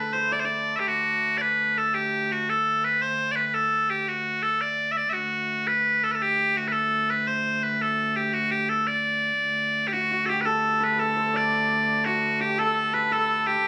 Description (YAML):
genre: medieval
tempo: 113 BPM (dotted quarters)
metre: 6/8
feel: straight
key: D mixolydian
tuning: A4 = 439 Hz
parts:
  - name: loud bright bagpipes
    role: melody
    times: 0.0-13.7 s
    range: F#4 to E5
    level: -25 LUFS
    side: equal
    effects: none
  - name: hammered dulcimer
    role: second line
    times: 0.0-2.9, 9.9-13.7 s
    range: F#4 to E5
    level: -33 LUFS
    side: equal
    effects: none
  - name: warm viola da gamba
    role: drone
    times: 0.0-13.7 s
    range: D2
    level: -36 LUFS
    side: equal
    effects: none
room: wet club reverb, RT60 0.7 s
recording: vinyl crackle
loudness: -24 LUFS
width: mono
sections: 0.8-9.4 A section; 9.4-13.7 B section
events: none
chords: none